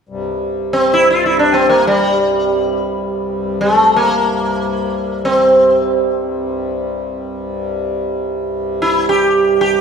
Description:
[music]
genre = indian classical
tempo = free time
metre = none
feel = none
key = C raga khamaj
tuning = A4 = 440 Hz
[part]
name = hand-pumped harmonium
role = drone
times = 0.1-9.8 s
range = C2 to G2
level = -20 LUFS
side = left 1 dB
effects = none
[part]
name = sitar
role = melody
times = 0.7-9.8 s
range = G3 to G4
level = -13 LUFS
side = right 1 dB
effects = none
[sound]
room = wet recital hall reverb, RT60 1.4 s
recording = recorded in a church or concert hall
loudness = -13 LUFS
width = side -6 dB against mid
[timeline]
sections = 0.1-9.8 A section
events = none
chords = none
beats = free time

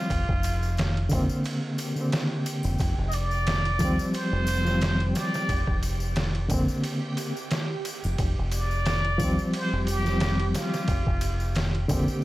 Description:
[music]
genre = trip hop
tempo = 89 BPM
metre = 4/4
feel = swing 55% on 16ths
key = unclear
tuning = A4 = 437 Hz
[part]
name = trumpet with plunger mute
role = melody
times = 0.0-11.9 s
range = F4 to Eb5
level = -31 LUFS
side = right 1 dB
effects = vintage 12-bit sampler grit, tape echo
[part]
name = reed electric piano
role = accompaniment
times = 0.0-12.2 s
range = D3 to C4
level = -28 LUFS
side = equal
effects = fast tremolo, harmonic tremolo, tape echo
[part]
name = backwards swelling texture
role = texture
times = 0.9-12.2 s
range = G4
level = -40 LUFS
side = right 4 dB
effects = built-in reverb
[part]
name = deep dub fingered electric bass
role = bass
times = 0.1-12.1 s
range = F1 to Eb2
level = -27 LUFS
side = equal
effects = tube saturation
[part]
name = trip hop sampler-style drum kit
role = drums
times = 0.1-12.1 s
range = kick drum, ride cymbal, snare drum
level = -30 LUFS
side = equal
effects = overdrive
[part]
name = tambourine and triangle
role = percussion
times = 0.1-12.2 s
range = none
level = -42 LUFS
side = left 4 dB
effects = none
[sound]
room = light reverb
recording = vinyl crackle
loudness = -24 LUFS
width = side -16 dB against mid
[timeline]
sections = 0.0-12.2 A section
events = none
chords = 0.1 Bbadd9/F; 2.8 Fsus2; 5.5 Bbadd9/F; 8.2 Fsus2; 10.9 Bbadd9/F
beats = | 0.10 0.77 1.45 2.12 | 2.79 3.47 4.14 4.82 | 5.49 6.16 6.84 7.51 | 8.19 8.86 9.54 10.21 | 10.88 11.56 12.23

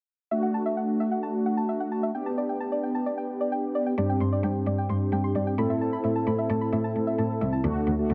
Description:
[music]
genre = synth-pop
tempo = 131 BPM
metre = 4/4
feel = straight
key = D mixolydian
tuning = A4 = 443 Hz
[part]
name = mellow synth brass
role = accompaniment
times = 0.3-8.1 s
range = A3 to A4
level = -30 LUFS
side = equal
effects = chorus
[part]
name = soft round pluck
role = arpeggios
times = 0.3-7.6 s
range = D5 to C6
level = -34 LUFS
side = equal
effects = chorus, delay
[part]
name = rich cello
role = bass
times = 4.0-8.1 s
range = C2 to A2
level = -29 LUFS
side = equal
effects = none
[sound]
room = light reverb, studio reverb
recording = none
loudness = -27 LUFS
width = mono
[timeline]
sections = 0.3-7.6 A section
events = none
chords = 0.3 Dadd9; 2.1 Gadd9; 4.0 Csus2/G; 5.6 Amadd9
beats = | 0.32 0.77 1.23 1.69 | 2.15 2.60 3.06 3.52 | 3.98 4.44 4.89 5.35 | 5.81 6.27 6.73 7.18 | 7.64 8.10

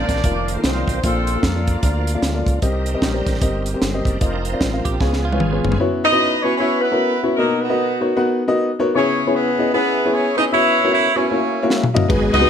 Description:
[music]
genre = uptempo gospel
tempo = 152 BPM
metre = 4/4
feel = swing 61% on 8ths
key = Bb major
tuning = A4 = 440 Hz
[part]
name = warm horn section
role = melody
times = 0.0-2.5, 6.0-12.5 s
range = Bb3 to E5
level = -18 LUFS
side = equal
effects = none
[part]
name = warm grand piano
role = accompaniment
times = 0.0-12.5 s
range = G#2 to F#5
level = -20 LUFS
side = left 2 dB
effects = none
[part]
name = bright tonewheel organ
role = sustained chords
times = 0.0-5.8, 12.1-12.5 s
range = Eb3 to C5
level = -28 LUFS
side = right 5 dB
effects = slow rotary speaker, chorus vibrato
[part]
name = round analog bass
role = bass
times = 0.0-5.8, 12.1-12.5 s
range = F1 to F2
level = -23 LUFS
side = equal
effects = none
[part]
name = tight funk drum kit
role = drums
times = 0.1-5.8, 11.7-12.4 s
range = hi-hat, kick drum, ride cymbal, snare drum, toms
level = -20 LUFS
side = equal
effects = none
[part]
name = twelve-string electric guitar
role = second line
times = 4.8-5.8 s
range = F4 to Ab4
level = -30 LUFS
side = right 6 dB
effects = none
[sound]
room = moderate large studio reverb, RT60 1.2 s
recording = none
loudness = -16 LUFS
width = side -8 dB against mid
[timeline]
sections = 0.0-5.8 A section; 5.8-12.5 B section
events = drum fill 5.0-5.8, 11.7-12.1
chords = 0.0 F7sus4; 1.0 Bbmaj7; 2.6 Cm7; 4.2 F7sus4; 5.0 Db7; 5.8 F#7sus4; 7.4 Bmaj7; 9.0 C#m7; 10.5 F#7sus4; 11.3 F#7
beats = 0.24 0.64 | 1.03 1.43 1.83 2.23 | 2.62 3.02 3.42 3.82 | 4.22 4.61 5.01 5.41 | 5.80 6.20 6.59 6.98 | 7.38 7.77 8.16 8.56 | 8.95 9.34 9.74 10.13 | 10.52 10.92 11.31 11.70 | 12.10 12.49

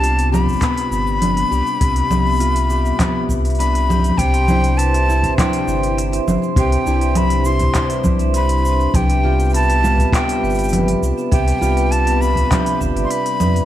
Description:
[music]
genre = folktronica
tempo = 101 BPM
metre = 4/4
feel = straight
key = C major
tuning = A4 = 440 Hz
[part]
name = breathy bright jazz flute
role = melody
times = 0.0-13.7 s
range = G5 to C6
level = -21 LUFS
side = left 2 dB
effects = ping-pong delay
[part]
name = warbly tape-like pad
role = sustained chords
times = 0.0-13.7 s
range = C3 to E5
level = -26 LUFS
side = left 2 dB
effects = chorus, built-in reverb
[part]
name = fingerpicked steel-string acoustic guitar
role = arpeggios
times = 0.0-13.7 s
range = C3 to G4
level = -24 LUFS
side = equal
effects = none
[part]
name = warm sub bass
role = bass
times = 0.0-13.6 s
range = G1 to F2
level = -18 LUFS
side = equal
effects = none
[part]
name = organic electronic drum kit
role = drums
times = 0.0-13.7 s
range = congas, handclaps, hi-hat, shaker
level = -22 LUFS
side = equal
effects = overdrive
[part]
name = kick drum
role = drums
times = 0.5-12.9 s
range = none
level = -20 LUFS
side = equal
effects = none
[part]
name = vibraphone with medium hard mallets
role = second line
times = 4.2-13.7 s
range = B4 to C6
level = -24 LUFS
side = right 4 dB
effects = digital delay
[sound]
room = light reverb, small room ambience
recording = vinyl crackle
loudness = -14 LUFS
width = side -12 dB against mid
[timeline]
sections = 0.0-4.2 A section; 4.2-13.7 B section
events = none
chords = 0.0 G7; 4.2 Cadd9; 8.9 G7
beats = 0.04 0.63 1.22 | 1.82 2.41 3.00 3.60 | 4.19 4.79 5.38 5.97 | 6.57 7.16 7.76 8.35 | 8.95 9.54 10.13 10.73 | 11.32 11.92 12.51 13.10

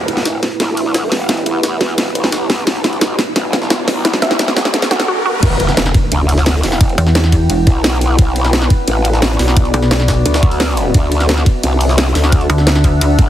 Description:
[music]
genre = dark technical drum and bass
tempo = 174 BPM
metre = 4/4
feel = straight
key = E minor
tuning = A4 = 438 Hz
[part]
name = deep dark ambient pad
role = sustained chords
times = 0.0-13.3 s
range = B3 to G5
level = -20 LUFS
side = equal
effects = chorus, built-in reverb, sidechain pumping
[part]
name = growl bass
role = bass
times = 0.0-13.3 s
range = E1 to E2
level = -16 LUFS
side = equal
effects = chorus, sidechain pumping, high-pass filter
[part]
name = riser and impact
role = sound effects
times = 0.0-6.8 s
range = none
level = -22 LUFS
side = equal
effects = none
[part]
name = wide unison pluck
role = arpeggios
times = 0.1-5.3 s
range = E4 to E5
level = -21 LUFS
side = right 1 dB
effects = auto-pan, sidechain pumping, digital delay
[part]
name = drum and bass drum kit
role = drums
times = 0.1-13.3 s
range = crash cymbal, hi-hat, snare drum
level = -17 LUFS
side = equal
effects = none
[part]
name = jungle sampler-style drum kit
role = drums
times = 0.1-13.3 s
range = hi-hat, ride cymbal, snare drum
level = -25 LUFS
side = equal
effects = high-pass filter on cymbals, high-pass filter on snare, high-pass filter on hats
[part]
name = electronic kick drum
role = drums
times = 5.4-13.3 s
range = none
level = -12 LUFS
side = equal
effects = none
[part]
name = pulsing pluck wobble bass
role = bass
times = 7.0-7.7, 9.7-10.2, 12.5-13.2 s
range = E1 to E2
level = -12 LUFS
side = equal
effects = chorus
[sound]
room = light reverb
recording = heavily compressed radio sound, high-pass filter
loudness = -11 LUFS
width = side -12 dB against mid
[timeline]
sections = 0.0-5.4 A section; 5.4-13.3 B section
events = build-up 0.0-5.4; drum fill 0.0-5.1; riser 0.0-5.4; filter sweep on synth arpeggio sound 0.0-5.4; drop 5.4-13.3; impact 5.4-6.8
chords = 0.0 Em; 2.7 Bm7; 5.4 Em; 8.2 Bm7; 10.9 Dadd9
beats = 0.26 0.60 0.94 | 1.29 1.64 1.98 2.33 | 2.67 3.01 3.36 3.70 | 4.05 4.39 4.74 5.08 | 5.43 5.77 6.12 6.46 | 6.81 7.15 7.50 7.84 | 8.19 8.53 8.88 9.22 | 9.57 9.91 10.26 10.60 | 10.95 11.29 11.63 11.98 | 12.32 12.67 13.01

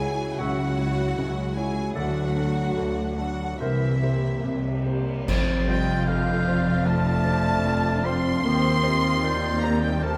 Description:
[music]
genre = cinematic, emotional film score for orchestra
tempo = 76 BPM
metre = 4/4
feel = rubato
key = unclear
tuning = A4 = 441 Hz
[part]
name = warm symphonic violin section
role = melody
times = 0.0-10.2 s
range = E5 to C6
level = -39 LUFS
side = equal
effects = none
[part]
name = bright concert flute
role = second line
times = 0.0-10.2 s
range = E5 to A6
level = -37 LUFS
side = equal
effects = none
[part]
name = dark studio violin section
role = second line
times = 0.0-10.2 s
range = E4 to C6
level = -38 LUFS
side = equal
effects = none
[part]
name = clear baby grand piano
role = accompaniment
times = 0.0-10.2 s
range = F1 to C#5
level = -33 LUFS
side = equal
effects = none
[part]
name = warm symphonic viola section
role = accompaniment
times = 0.0-10.2 s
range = D3 to G4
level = -38 LUFS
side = equal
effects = none
[part]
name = dark French horn section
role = sustained chords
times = 0.0-10.2 s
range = E3 to C4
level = -33 LUFS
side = equal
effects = none
[part]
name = concert harp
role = arpeggios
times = 0.0-10.2 s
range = C3 to F5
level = -36 LUFS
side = equal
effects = none
[part]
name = warm studio cello section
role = bass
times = 0.0-10.2 s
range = C2 to F2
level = -32 LUFS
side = equal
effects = none
[part]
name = warm symphonic double bass section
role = bass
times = 0.0-10.2 s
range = F1 to Eb2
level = -31 LUFS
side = equal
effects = none
[part]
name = mellow clarinet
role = second line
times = 0.4-10.2 s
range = F#4 to Eb5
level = -37 LUFS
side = equal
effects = none
[part]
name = mellow oboe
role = second line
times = 0.4-10.2 s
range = C5 to C6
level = -33 LUFS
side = equal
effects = none
[part]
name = cymbal swell, clash cymbals and concert bass drum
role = percussion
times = 2.0-6.8 s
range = none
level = -34 LUFS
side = equal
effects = none
[sound]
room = light reverb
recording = none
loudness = -24 LUFS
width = mono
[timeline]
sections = 0.0-5.3 A section; 5.3-10.2 B section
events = band accent 5.3-6.1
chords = 0.0 F#7(no3)/C#; 2.0 D; 3.6 C7; 5.3 F7; 8.4 Cm7/Eb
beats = 0.40 1.18 | 1.97 2.77 3.61 4.45 | 5.28 6.08 6.87 7.66 | 8.44 9.23 10.03

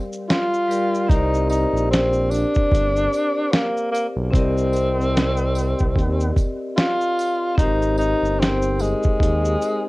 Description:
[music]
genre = lo-fi hip hop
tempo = 74 BPM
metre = 4/4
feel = swing 56% on 16ths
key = C minor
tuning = A4 = 441 Hz
[part]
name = breathy tenor saxophone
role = melody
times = 0.0-9.9 s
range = Ab3 to F4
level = -22 LUFS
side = equal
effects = low-pass filter
[part]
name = vibraphone with hard mallets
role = accompaniment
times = 0.0-9.9 s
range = G3 to G5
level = -25 LUFS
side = left 1 dB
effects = cassette tape, low-pass filter
[part]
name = dusty soul sampler-style drum kit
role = drums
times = 0.1-9.8 s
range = hi-hat, kick drum, shaker, snare drum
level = -20 LUFS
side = equal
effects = vintage 12-bit sampler grit
[part]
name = tambourine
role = percussion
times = 0.7-9.8 s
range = none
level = -42 LUFS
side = right 5 dB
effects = none
[part]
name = smooth synth bass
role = bass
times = 1.1-9.6 s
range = G1 to Eb2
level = -22 LUFS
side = equal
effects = none
[sound]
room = moderate studio reverb, RT60 0.6 s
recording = worn, warbling old tape, cassette tape, warbly pitch drift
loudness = -18 LUFS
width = side -20 dB against mid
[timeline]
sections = 0.0-9.9 A section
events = none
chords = 0.0 Gm7; 1.1 Cm9; 7.6 Abmaj7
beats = 0.29 | 1.10 1.91 2.72 3.53 | 4.34 5.15 5.96 6.77 | 7.58 8.39 9.21

